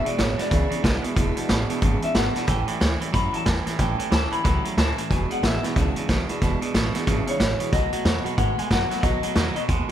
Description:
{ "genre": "rockabilly", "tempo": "183 BPM", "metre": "4/4", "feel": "swing 61% on 8ths", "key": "E mixolydian", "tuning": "A4 = 440 Hz", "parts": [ { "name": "electric guitar through a small old amp", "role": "melody", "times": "0.0-9.9 s", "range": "C#5 to B5", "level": "-28 LUFS", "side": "left 2 dB", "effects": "tape echo" }, { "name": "picked steel-string acoustic guitar", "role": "accompaniment", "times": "0.0-9.9 s", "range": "E2 to F#4", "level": "-31 LUFS", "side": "left 4 dB", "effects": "none" }, { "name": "twangy electric guitar", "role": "riff", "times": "0.0-9.9 s", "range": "E2 to G#3", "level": "-28 LUFS", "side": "right 7 dB", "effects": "none" }, { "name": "upright bass", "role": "bass", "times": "0.0-9.9 s", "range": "E1 to G#2", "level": "-26 LUFS", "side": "equal", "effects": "none" }, { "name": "vintage drum kit", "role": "drums", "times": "0.1-9.9 s", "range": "hi-hat, kick drum, snare drum", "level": "-24 LUFS", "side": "equal", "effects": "none" } ], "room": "light reverb", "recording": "none", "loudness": "-20 LUFS", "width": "side -10 dB against mid", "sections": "0.0-9.9 A section", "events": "none", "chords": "0.0 E7; 2.5 A7; 5.1 E7; 7.7 B7" }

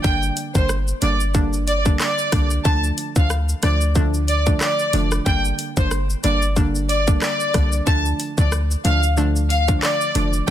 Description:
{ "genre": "dancehall", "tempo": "92 BPM", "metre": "4/4", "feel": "swing 56% on 16ths", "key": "D minor", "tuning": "A4 = 440 Hz", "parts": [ { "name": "warm studio violin section", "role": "melody", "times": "0.0-10.5 s", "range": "C5 to A5", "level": "-23 LUFS", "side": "equal", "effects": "ping-pong delay" }, { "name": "hollow square pluck", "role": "accompaniment", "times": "0.0-10.5 s", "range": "D3 to D4", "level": "-25 LUFS", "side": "right 1 dB", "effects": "chorus" }, { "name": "warm 808-style bass", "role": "bass", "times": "0.0-10.5 s", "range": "F1 to D2", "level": "-20 LUFS", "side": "equal", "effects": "none" }, { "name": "island pop drum kit", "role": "drums", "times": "0.0-10.5 s", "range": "handclaps, hi-hat, kick drum, rim click, shaker", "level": "-21 LUFS", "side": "equal", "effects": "none" } ], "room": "little or no reverb", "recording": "dense, heavily limited modern master", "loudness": "-17 LUFS", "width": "side -11 dB against mid", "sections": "0.0-10.5 A section", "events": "none", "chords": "0.0 Gm; 2.7 Dm; 5.3 Gm; 7.9 Dm" }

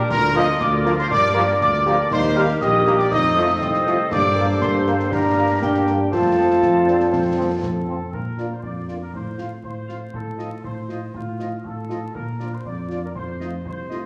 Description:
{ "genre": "military-style march for wind band", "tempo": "120 BPM", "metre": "2/4", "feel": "straight", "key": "unclear", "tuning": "A4 = 440 Hz", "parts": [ { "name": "mellow trumpet section", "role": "melody", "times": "0.0-14.1 s", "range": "F4 to F5", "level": "-30 LUFS", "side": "equal", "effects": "none" }, { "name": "clear woodwind section", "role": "second line", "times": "0.0-14.0 s", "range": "F4 to F5", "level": "-33 LUFS", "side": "equal", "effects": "none" }, { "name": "warm euphonium", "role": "second line", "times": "0.0-8.1 s", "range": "A3 to G4", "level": "-28 LUFS", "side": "equal", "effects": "none" }, { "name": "mellow tuba", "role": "bass", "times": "0.0-14.0 s", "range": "Bb1 to Bb2", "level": "-28 LUFS", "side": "equal", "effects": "none" }, { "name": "mellow wooden piccolo", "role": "second line", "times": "0.1-7.6 s", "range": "G5 to F6", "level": "-24 LUFS", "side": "equal", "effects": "none" }, { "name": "concert snare drum, clash cymbals and concert bass drum", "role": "drums", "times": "0.1-14.0 s", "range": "none", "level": "-35 LUFS", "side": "equal", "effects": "none" }, { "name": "dark French horn section", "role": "accompaniment", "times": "0.3-14.0 s", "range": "F3 to G4", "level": "-26 LUFS", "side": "equal", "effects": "none" }, { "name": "warm trombone section", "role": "sustained chords", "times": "0.3-8.0 s", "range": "F3 to C4", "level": "-30 LUFS", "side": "equal", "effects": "none" } ], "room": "wet large studio reverb, RT60 1.2 s", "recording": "vinyl crackle", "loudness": "-20 LUFS", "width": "mono", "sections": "0.0-8.1 A section; 8.1-14.1 B section", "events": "none", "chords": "0.1 Bb/D; 1.1 Gm7; 2.1 Eb; 3.1 F7; 4.1 Gm; 6.1 F; 8.1 Bb; 9.1 F/A; 10.1 F7/A; 12.1 Bb; 13.2 F7" }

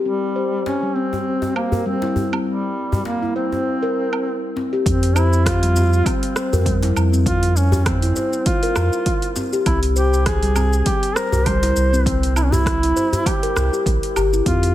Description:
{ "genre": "organic downtempo", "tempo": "100 BPM", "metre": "4/4", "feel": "swing 56% on 16ths", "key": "C phrygian dominant", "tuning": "A4 = 440 Hz", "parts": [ { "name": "steel tongue drum", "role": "arpeggios", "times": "0.0-14.6 s", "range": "G3 to C5", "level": "-22 LUFS", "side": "left 2 dB", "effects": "low-pass filter, ping-pong delay" }, { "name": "mellow duduk", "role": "melody", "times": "0.1-14.7 s", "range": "G3 to C5", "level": "-23 LUFS", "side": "equal", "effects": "ping-pong delay" }, { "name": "djembe", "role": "percussion", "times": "0.7-14.3 s", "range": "none", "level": "-26 LUFS", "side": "left 1 dB", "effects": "none" }, { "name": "deep house drum kit", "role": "drums", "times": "1.6-14.7 s", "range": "hi-hat, rim click, shaker, woodblock", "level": "-27 LUFS", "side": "right 2 dB", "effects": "low-pass filter on perc, low-pass filter on hats, low-pass filter on snare" }, { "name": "warm sub bass", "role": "bass", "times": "4.9-14.7 s", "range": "G1 to F2", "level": "-18 LUFS", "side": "equal", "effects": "sidechain pumping" }, { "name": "electronic kick drum", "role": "drums", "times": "4.9-14.6 s", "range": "none", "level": "-22 LUFS", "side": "equal", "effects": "none" } ], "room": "light reverb, studio reverb", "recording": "none", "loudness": "-16 LUFS", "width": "side -13 dB against mid", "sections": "0.0-4.9 A section; 4.9-14.7 B section", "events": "filter sweep on steel tongue drum 0.0-4.9", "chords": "0.0 Gmadd11; 4.9 F5; 9.7 C" }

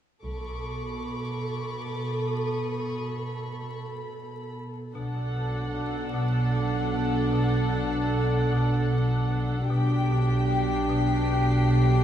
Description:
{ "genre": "cinematic, suspense film score", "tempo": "76 BPM", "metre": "3/4", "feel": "straight", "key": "B minor", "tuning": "A4 = 438 Hz", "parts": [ { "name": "dark studio violin section", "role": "melody", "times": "0.2-12.0 s", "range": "A4 to G5", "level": "-34 LUFS", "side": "left 1 dB", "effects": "none" }, { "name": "rich studio double bass section", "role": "bass", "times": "0.2-1.0, 5.0-12.0 s", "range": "B1", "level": "-30 LUFS", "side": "right 2 dB", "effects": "none" }, { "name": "warm studio cello section", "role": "bass", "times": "0.2-12.0 s", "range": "B2", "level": "-32 LUFS", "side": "right 2 dB", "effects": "none" }, { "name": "warm studio violin section", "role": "texture", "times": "0.2-4.5, 9.7-12.0 s", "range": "B5 to C7", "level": "-39 LUFS", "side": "left 3 dB", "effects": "none" }, { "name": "dark studio violin section", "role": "second line", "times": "5.0-12.0 s", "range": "G4 to A4", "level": "-32 LUFS", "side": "left 2 dB", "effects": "none" }, { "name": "rich studio viola section", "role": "accompaniment", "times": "5.0-12.0 s", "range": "D4", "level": "-30 LUFS", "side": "equal", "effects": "none" }, { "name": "marimba with hard mallets", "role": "riff", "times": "5.0-11.9 s", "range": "B2", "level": "-27 LUFS", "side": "equal", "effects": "none" } ], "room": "wet scoring stage reverb, RT60 1.7 s", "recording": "heard from further back in the room, vinyl crackle", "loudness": "-24 LUFS", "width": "side -10 dB against mid", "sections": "0.2-5.0 A section; 5.0-12.0 B section", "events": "none", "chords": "0.2 Bm7" }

